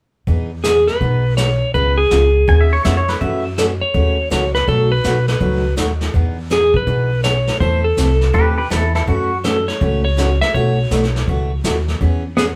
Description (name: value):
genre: country, western swing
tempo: 164 BPM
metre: 4/4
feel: swing 64% on 8ths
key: E major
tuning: A4 = 440 Hz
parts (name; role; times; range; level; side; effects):
- picked steel-string acoustic guitar; accompaniment; 0.3-12.5 s; B2 to A4; -25 LUFS; equal; none
- upright bass; bass; 0.3-12.6 s; B1 to F#2; -20 LUFS; equal; none
- vintage brush drum kit; drums; 0.3-12.6 s; brushed snare drum, hi-hat, kick drum, snare drum; -26 LUFS; equal; none
- clean lap steel guitar; melody; 0.6-12.4 s; G#4 to E5; -20 LUFS; equal; none
- pedal steel guitar; second line; 2.5-3.4, 8.3-9.4 s; E4 to G#5; -22 LUFS; equal; none
- hollow-body jazz guitar; second line; 12.4 s; B3; -19 LUFS; equal; none
room: moderate studio reverb, RT60 0.6 s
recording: band playing live in one room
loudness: -16 LUFS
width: mono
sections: 0.3-12.6 A section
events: none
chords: 0.3 Emaj7; 1.7 C#7; 3.2 F#m7; 4.7 B7; 6.1 Emaj7; 7.6 Am; 9.1 F#m7; 10.5 B9sus4; 12.0 E6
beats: | 0.28 0.64 1.01 1.38 | 1.74 2.11 2.48 2.84 | 3.21 3.57 3.94 4.31 | 4.67 5.04 5.41 5.77 | 6.14 6.51 6.87 7.24 | 7.61 7.97 8.34 8.70 | 9.07 9.44 9.80 10.17 | 10.54 10.90 11.27 11.64 | 12.01 12.37